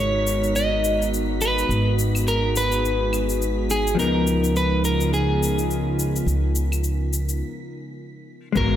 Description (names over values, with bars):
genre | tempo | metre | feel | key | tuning
sunset chillout | 105 BPM | 4/4 | swing 57% on 16ths | unclear | A4 = 441 Hz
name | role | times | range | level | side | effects
electric guitar at the edge of break-up | melody | 0.0-8.8 s | G#4 to D#5 | -24 LUFS | equal | ping-pong delay
hollow-body jazz guitar | accompaniment | 0.0-8.8 s | E#3 to A#4 | -26 LUFS | moving between left 6 dB and right 6 dB | auto-pan
airy breathy pad | sustained chords | 0.0-8.8 s | C#3 to A#4 | -27 LUFS | equal | chorus
upright bass | bass | 0.0-8.8 s | G#1 to C#2 | -24 LUFS | equal | none
wind-like tuned noise texture | texture | 0.0-7.4 s | B6 | -40 LUFS | right 1 dB | built-in reverb
cabasa and claves | drums | 0.3-8.7 s | none | -31 LUFS | left 4 dB | none
electronic kick drum | drums | 8.6-8.7 s | none | -25 LUFS | equal | overdrive
room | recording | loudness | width
moderate concert hall reverb, RT60 1.8 s, small room ambience | none | -19 LUFS | side -11 dB against mid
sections
0.0-8.6 A section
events
break 7.4-8.6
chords
0.0 G#m9; 4.0 C#13